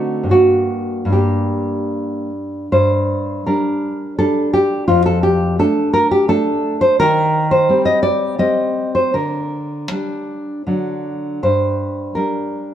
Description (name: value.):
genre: romantic piece for solo classical guitar.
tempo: 72-87 BPM.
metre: 3/4.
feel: rubato.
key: G minor.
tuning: A4 = 440 Hz.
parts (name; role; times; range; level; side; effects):
nylon-string guitar; solo; 0.0-12.7 s; F2 to Eb5; -15 LUFS; equal; none.
room: moderate recital hall reverb, RT60 1.5 s.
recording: none.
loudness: -15 LUFS.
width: side -10 dB against mid.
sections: 0.0-2.7 A section; 2.7-12.7 B section.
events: none.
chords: 0.3 Gm; 4.9 Dm/F; 7.0 Cm/Eb; 9.1 Gm/D; 10.7 D; 11.4 Gm.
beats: | 0.31 1.13 1.93 | 2.73 3.47 4.18 | 4.88 5.59 6.29 | 6.99 7.69 8.40 | 9.14 9.90 10.67 | 11.43 12.15.